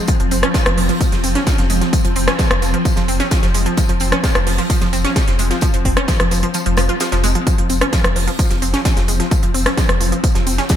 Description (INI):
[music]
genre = driving peak-time techno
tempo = 130 BPM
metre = 4/4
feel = straight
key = unclear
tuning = A4 = 442 Hz
[part]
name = wide unison pluck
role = riff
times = 0.0-10.8 s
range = F3 to F4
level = -21 LUFS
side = equal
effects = sidechain pumping, ping-pong delay
[part]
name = swarming drone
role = drone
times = 0.0-10.8 s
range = F3 to C4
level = -23 LUFS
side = equal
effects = built-in reverb, sidechain pumping
[part]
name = crisp fusion drum kit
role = drums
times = 0.1-10.8 s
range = hi-hat, snare drum, tambourine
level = -27 LUFS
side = equal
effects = high-pass filter on hats, high-pass filter on snare, high-pass filter on perc, high-pass filter on room, gated reverb
[part]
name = electronic kick drum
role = drums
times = 0.1-10.8 s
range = none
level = -17 LUFS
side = equal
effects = none
[part]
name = techno drum kit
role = drums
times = 0.1-10.8 s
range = hi-hat, rim click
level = -21 LUFS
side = equal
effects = gated reverb
[part]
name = saturated sub bass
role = bass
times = 0.2-10.6 s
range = F1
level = -20 LUFS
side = equal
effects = tube saturation, sidechain pumping, low-pass filter
[sound]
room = light reverb, studio reverb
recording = bright 1980s-style digital production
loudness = -14 LUFS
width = side -10 dB against mid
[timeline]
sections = 0.0-10.8 A section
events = kick drops out 6.5-7.5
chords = 0.0 F5